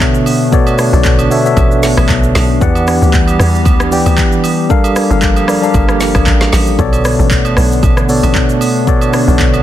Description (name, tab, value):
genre	amapiano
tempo	115 BPM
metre	4/4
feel	swing 55% on 16ths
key	B minor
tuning	A4 = 440 Hz
part	mellow tine electric piano	accompaniment	0.0-9.6 s	B2 to G5	-13 LUFS	left 2 dB	auto-pan
part	hollow soft pad	sustained chords	0.0-9.6 s	D3 to G4	-19 LUFS	right 4 dB	chorus
part	deep house drum kit	drums	0.0-9.6 s	handclaps, hi-hat, kick drum, rim click, shaker, snare drum	-14 LUFS	equal	none
part	agogo bells and woodblock	percussion	0.3-9.6 s	none	-25 LUFS	right 7 dB	none
part	tight log drum bass	bass	0.9-9.6 s	G1 to E2	-14 LUFS	equal	none
room	little or no reverb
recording	dense, heavily limited modern master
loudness	-9 LUFS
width	side -12 dB against mid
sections	0.0-9.6 A section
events	none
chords	0.0 Bm9; 2.6 Em9; 4.7 Gm9; 6.8 Bm9